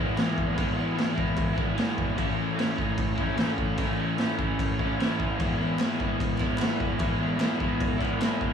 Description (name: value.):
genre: garage rock duo or trio.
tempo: 149 BPM.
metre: 4/4.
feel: straight.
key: E major.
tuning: A4 = 440 Hz.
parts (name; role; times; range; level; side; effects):
crunchy overdriven guitar; riff; 0.0-8.5 s; A2 to E4; -26 LUFS; equal; none.
raw garage drum kit; drums; 0.2-8.5 s; crash cymbal, kick drum, snare drum; -28 LUFS; equal; none.
group handclap; percussion; 5.8-8.3 s; none; -41 LUFS; equal; none.
room: moderate studio reverb, RT60 0.6 s.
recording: none.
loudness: -24 LUFS.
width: side -7 dB against mid.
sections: 0.0-8.5 A section.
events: none.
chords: 0.0 E; 2.2 A; 5.4 E.